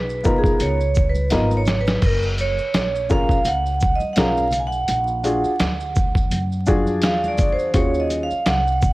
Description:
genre	hip hop, jazz-hop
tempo	84 BPM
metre	4/4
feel	swing 58% on 16ths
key	Bb minor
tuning	A4 = 440 Hz
part	vibraphone with medium hard mallets	melody	0.0-8.9 s	Ab4 to Ab5	-22 LUFS	right 2 dB	tape echo
part	upright bass	bass	0.0-8.9 s	Gb1 to Gb2	-24 LUFS	equal	none
part	maracas and congas	percussion	0.1-8.9 s	none	-35 LUFS	right 1 dB	none
part	dark upright piano	accompaniment	0.2-8.3 s	Cb4 to Bb4	-23 LUFS	left 2 dB	none
part	dusty soul sampler-style drum kit	drums	0.2-8.9 s	crash cymbal, hi-hat, kick drum, shaker, snare drum	-20 LUFS	equal	vintage 12-bit sampler grit
room	light reverb, small room ambience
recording	worn, warbling old tape, cassette tape, vinyl crackle, warbly pitch drift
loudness	-17 LUFS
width	side -20 dB against mid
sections	0.0-8.9 A section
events	vibraphone solo 0.0-8.9; drum fill 1.3-2.0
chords	0.0 Abm; 0.6 Db13; 2.0 Gbmaj7; 4.9 Bb7b13; 7.7 Ebm11

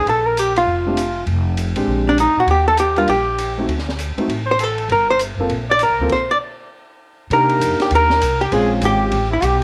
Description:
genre	jazz, small-group swing and bop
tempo	199 BPM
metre	4/4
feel	swing 63% on 8ths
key	G minor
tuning	A4 = 440 Hz
part	archtop guitar, miked and amplified	melody	0.0-9.6 s	D4 to D5	-19 LUFS	equal	none
part	bright trumpet	second line	0.0-9.6 s	D4 to D5	-26 LUFS	equal	none
part	upright bass	bass	0.0-9.6 s	F1 to C3	-24 LUFS	equal	none
part	open jazz drum kit	drums	0.1-9.5 s	crash cymbal, hi-hat, kick drum, ride cymbal, snare drum	-32 LUFS	equal	none
part	warm grand piano	accompaniment	0.9-9.1 s	G3 to A4	-24 LUFS	equal	none
room	moderate plate reverb, RT60 1.3 s, small room ambience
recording	none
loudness	-17 LUFS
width	mono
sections	0.0-7.3 A section; 7.3-9.6 B section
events	stop 6.1-7.3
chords	0.1 Bbmaj7(no3); 1.3 Fmadd9; 1.9 Bb13; 2.5 Eb; 3.7 D7(no3); 4.9 Gm11; 7.3 Cm7; 8.5 Bbm9; 9.1 Asus2

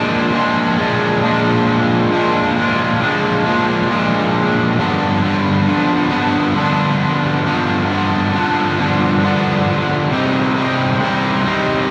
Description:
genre	rock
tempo	45 BPM (dotted quarters)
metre	6/8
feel	straight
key	unclear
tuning	A4 = 440 Hz
part	cranked stack guitar	solo	0.0-11.9 s	G2 to Eb4	-16 LUFS	equal	overdrive, lush chorus, digital delay
room	wet plate reverb, RT60 3.2 s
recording	dreamy mix soaked in reverb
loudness	-16 LUFS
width	mono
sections	0.0-11.9 A section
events	none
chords	0.0 Bb7; 4.8 G7; 10.1 Cm

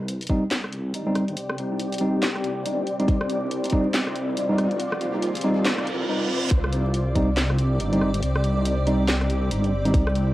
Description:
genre	deep dubstep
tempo	140 BPM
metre	4/4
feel	swing 60% on 16ths, half-time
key	C minor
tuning	A4 = 440 Hz
part	granular cloud pad	sustained chords	0.9-10.3 s	C4 to F5	-28 LUFS	left 1 dB	built-in reverb, cassette tape
part	deep soft wobble bass	bass	0.0-10.3 s	G1 to Eb2	-26 LUFS	equal	chorus, high-pass filter
part	riser and reverse cymbal	sound effects	0.0-6.5 s	none	-34 LUFS	right 1 dB	none
part	garage drum kit	drums	0.1-10.3 s	handclaps, hi-hat, rim click, snare drum	-28 LUFS	equal	small room ambience, cassette tape
part	tine electric piano	stabs	0.3-10.0 s	G3 to Eb4	-26 LUFS	equal	cassette tape, dub echo
part	electronic kick drum	drums	0.3-0.4, 3.1-3.8, 6.5-7.3, 9.9-10.0 s	none	-22 LUFS	equal	small room ambience, cassette tape
room	moderate spring reverb, RT60 1.2 s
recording	home recording on cassette, vinyl crackle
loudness	-21 LUFS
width	side -16 dB against mid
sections	0.0-6.5 A section; 6.5-10.3 B section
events	build-up 0.0-6.5; riser 0.0-6.5; filter sweep on ambient pad 0.0-6.5; reverse cymbal 5.7-6.5; drop 6.5-10.3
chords	0.0 Cm

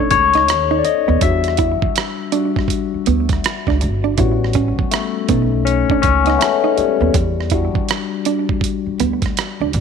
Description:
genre	R&B, neo-soul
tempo	81 BPM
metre	4/4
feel	swing 63% on 16ths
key	E dorian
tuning	A4 = 439 Hz
part	hollow-body jazz guitar	second line	0.0-9.8 s	B3 to E4	-22 LUFS	right 14 dB	slapback echo
part	barky tine electric piano	accompaniment	0.0-9.8 s	G3 to E5	-18 LUFS	left 10 dB	phaser
part	upright bass	bass	0.1-9.8 s	G1 to E2	-20 LUFS	right 1 dB	none
part	dusty soul sampler-style drum kit	drums	0.1-9.8 s	hi-hat, kick drum, rim click	-21 LUFS	right 4 dB	none
room	light reverb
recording	1960s-style stereo with parts hard left and right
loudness	-15 LUFS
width	side -6 dB against mid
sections	0.0-4.2 A section; 4.2-9.8 A section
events	tine electric piano solo 0.0-4.2, 4.2-9.8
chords	0.0 B9 (rootless); 1.2 Em9; 4.2 A13; 5.3 B9; 7.1 Em9

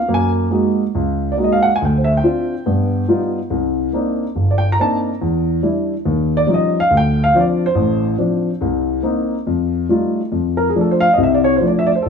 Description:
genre	jazz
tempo	141 BPM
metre	4/4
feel	swing 66% on 8ths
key	unclear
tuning	A4 = 440 Hz
part	dark baby grand piano	solo	0.0-12.1 s	G1 to Bb5	-14 LUFS	equal	none
room	wet stone room reverb, RT60 1.2 s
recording	band playing live in one room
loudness	-14 LUFS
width	side -6 dB against mid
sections	0.0-10.3 A section; 10.3-12.1 A section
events	grand piano solo 0.0-10.3, 10.3-12.1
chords	0.1 Gb69; 1.8 Dm11; 2.7 G7b13; 3.5 Cm9; 5.2 Em7; 6.1 Eb9; 6.9 Dm7; 8.6 Cm7; 9.5 F9; 10.3 F6

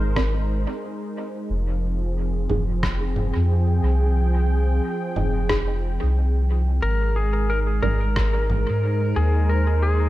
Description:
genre	ambient dub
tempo	90 BPM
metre	4/4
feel	swing 60% on 16ths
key	F minor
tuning	A4 = 440 Hz
part	warm analog pad	sustained chords	0.0-10.1 s	F3 to G5	-28 LUFS	right 2 dB	chorus
part	filtered dub chord stab	stabs	0.0-8.0 s	F3 to Bb4	-32 LUFS	right 1 dB	phaser, lush chorus, dub echo
part	soft dub sub bass	bass	0.0-10.1 s	F1 to Ab2	-21 LUFS	equal	tube saturation
part	electronic kick drum	drums	0.2-8.3 s	none	-27 LUFS	equal	none
part	electronic rim click and congas	drums	0.2-8.7 s	none	-30 LUFS	right 1 dB	dub echo
part	clean lap steel guitar	melody	6.8-10.1 s	Ab4 to Bb4	-26 LUFS	left 2 dB	dub echo
room	light reverb, digital ambience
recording	none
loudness	-20 LUFS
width	side -16 dB against mid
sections	0.0-10.1 A section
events	none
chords	0.0 Abmaj9#11; 1.5 Fm7; 6.8 Abmaj9

